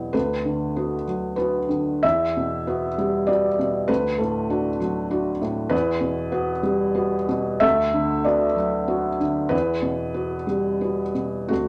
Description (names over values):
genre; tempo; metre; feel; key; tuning
neoclassical minimalist piano; 85-100 BPM; 3/4; rubato; E minor; A4 = 442 Hz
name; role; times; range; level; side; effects
felt-muted upright piano; solo; 0.0-11.7 s; D2 to E5; -23 LUFS; equal; none
room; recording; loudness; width
wet studio reverb, RT60 0.6 s; none; -23 LUFS; mono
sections
0.0-11.7 A section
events
none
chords
0.1 Bm/D; 2.0 Emadd9; 3.9 D; 5.7 Emadd9; 7.6 Bm/D; 9.5 Emadd9